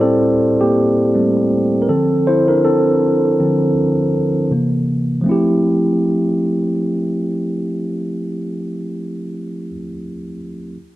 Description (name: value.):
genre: R&B.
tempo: 80 BPM.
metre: 4/4.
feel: swing 58% on 16ths.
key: F major.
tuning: A4 = 444 Hz.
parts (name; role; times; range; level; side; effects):
mellow tine electric piano; solo; 0.0-10.8 s; A2 to D5; -15 LUFS; equal; none.
room: moderate plate reverb, RT60 2.8 s.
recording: dark, warm production.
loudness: -14 LUFS.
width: side -16 dB against mid.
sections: 0.0-5.2 A section; 5.2-8.2 B section.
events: tine electric piano solo 0.0-5.2.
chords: 0.0 Am7; 1.9 Dm9; 4.5 C7; 5.2 Fmaj9.